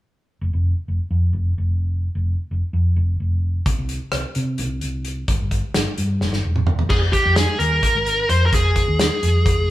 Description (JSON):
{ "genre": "progressive instrumental, band music in an uneven meter", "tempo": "259 BPM (eighths)", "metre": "7/8", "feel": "straight", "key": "F minor", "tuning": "A4 = 440 Hz", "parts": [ { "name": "hollow-body short-scale fingered electric bass", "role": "bass", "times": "0.4-9.7 s", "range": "E1 to C3", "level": "-20 LUFS", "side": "equal", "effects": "none" }, { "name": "loose indie drum kit", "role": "drums", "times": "3.7-9.6 s", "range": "crash cymbal, hi-hat, kick drum, rim click, snare drum, toms", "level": "-22 LUFS", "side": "equal", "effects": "none" }, { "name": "high-gain lead guitar", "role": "melody", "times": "6.9-9.7 s", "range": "G4 to C5", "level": "-19 LUFS", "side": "equal", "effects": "distortion" } ], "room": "wet large studio reverb, RT60 1.4 s", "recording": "band playing live in one room", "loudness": "-18 LUFS", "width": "side -15 dB against mid", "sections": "0.4-6.9 A section; 6.9-9.7 B section", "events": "drum fill 6.2-6.9", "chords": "0.4 N.C.; 5.3 Em; 6.9 Fm7" }